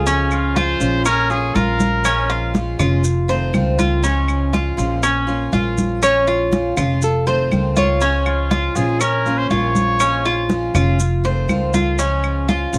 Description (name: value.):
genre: latin, Cuban son and guajira.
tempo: 121 BPM.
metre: 4/4.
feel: straight.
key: Bb minor.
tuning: A4 = 438 Hz.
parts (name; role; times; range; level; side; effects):
nylon-string guitar; melody; 0.0-1.3, 6.0-9.2 s; Ab4 to Db5; -23 LUFS; equal; cassette tape.
picked steel-string acoustic guitar; accompaniment; 0.0-12.8 s; Db3 to F4; -28 LUFS; equal; cassette tape.
Cuban tres; arpeggios; 0.0-12.8 s; Db4 to C5; -23 LUFS; equal; cassette tape.
upright bass; bass; 0.0-12.8 s; F1 to Db2; -23 LUFS; equal; none.
congas; percussion; 0.1-12.8 s; none; -24 LUFS; equal; none.
maracas; percussion; 0.1-12.8 s; none; -34 LUFS; equal; none.
clear trumpet; second line; 0.3-2.5, 8.3-10.5 s; F4 to Db5; -23 LUFS; equal; cassette tape.
claves; percussion; 0.3-12.5 s; none; -30 LUFS; equal; none.
room: light reverb.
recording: home recording on cassette.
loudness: -18 LUFS.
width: mono.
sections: 0.0-12.8 A section.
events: none.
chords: 0.1 Db; 1.1 Bbm; 2.1 Bbm7; 3.0 F7; 4.0 Db; 5.0 Bbm; 6.0 Bbm7; 7.0 F7; 8.0 Db; 9.0 Bbm; 10.0 Bbm7; 11.0 F7; 12.0 Db.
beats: | 0.06 0.56 1.06 1.55 | 2.05 2.55 3.04 3.54 | 4.04 4.54 5.03 5.53 | 6.03 6.52 7.02 7.52 | 8.02 8.51 9.01 9.51 | 10.00 10.50 10.99 11.49 | 11.99 12.48.